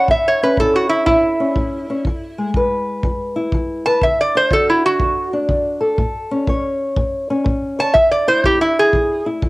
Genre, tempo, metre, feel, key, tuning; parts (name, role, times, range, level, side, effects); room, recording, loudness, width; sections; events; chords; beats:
acoustic country blues, solo or duo; 122 BPM; 4/4; swing 65% on 8ths; A major; A4 = 438 Hz
metal-body resonator slide guitar; melody; 0.0-9.3 s; E4 to A5; -14 LUFS; right 1 dB; cassette tape
fingerpicked old ladder-braced acoustic guitar; accompaniment; 0.0-9.5 s; A2 to C#5; -20 LUFS; left 1 dB
kick drum; drums; 0.1-9.5 s; -21 LUFS; equal; cassette tape
small room ambience; home recording on cassette; -14 LUFS; side -21 dB against mid
0.0-9.5 A section
resonator guitar played with a steel bar solo 0.0-9.5
0.0 A; 2.1 E; 4.0 D; 6.0 A; 8.0 E
| 0.09 0.58 1.07 1.56 | 2.06 2.55 3.04 3.53 | 4.02 4.51 5.00 5.50 | 5.99 6.48 6.97 7.46 | 7.95 8.45 8.94 9.43